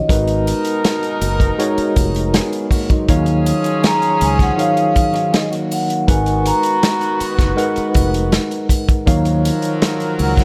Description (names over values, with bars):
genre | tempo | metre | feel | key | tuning
lush 1970s-style soul | 80 BPM | 4/4 | straight | unclear | A4 = 440 Hz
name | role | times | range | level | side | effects
vibraphone with soft mallets | melody | 0.0-10.4 s | Eb5 to Bb5 | -21 LUFS | equal | none
tine electric piano | accompaniment | 0.0-10.4 s | Eb3 to Gb5 | -22 LUFS | equal | none
warm horn section | stabs | 0.1-10.4 s | Cb3 to Bb4 | -25 LUFS | equal | none
fingered electric bass | bass | 0.1-10.4 s | F1 to Eb2 | -21 LUFS | equal | none
vintage drum kit | drums | 0.1-10.4 s | hi-hat, kick drum, snare drum | -20 LUFS | equal | none
triangle | percussion | 0.1-10.4 s | none | -36 LUFS | equal | none
electric guitar through a small old amp | riff | 2.3-6.1 s | Gb3 to Ab4 | -29 LUFS | equal | none
room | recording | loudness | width
studio reverb | none | -16 LUFS | mono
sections
0.0-10.4 A section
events
none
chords
0.1 Abm9; 3.1 Ebm9; 6.1 Abm9; 9.1 Ebm9